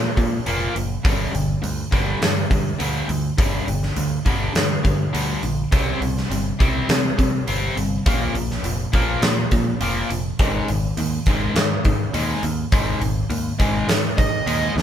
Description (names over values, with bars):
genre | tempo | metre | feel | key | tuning
hard rock | 103 BPM | 4/4 | straight | G phrygian | A4 = 439 Hz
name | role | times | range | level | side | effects
crunchy overdriven guitar | riff | 0.0-14.8 s | G2 to C4 | -24 LUFS | equal | none
picked electric bass | bass | 0.0-14.8 s | F1 to C3 | -25 LUFS | equal | none
huge arena drum kit | drums | 0.2-14.8 s | hi-hat, kick drum, snare drum | -22 LUFS | equal | none
smooth overdriven lead guitar | melody | 14.2-14.7 s | Eb5 | -23 LUFS | right 5 dB | none
room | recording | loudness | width
light reverb | band playing live in one room | -18 LUFS | side -10 dB against mid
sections
0.0-14.8 A section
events
none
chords
0.0 Bb5; 1.0 G5; 5.7 C5; 8.1 Bb5; 10.4 Ab5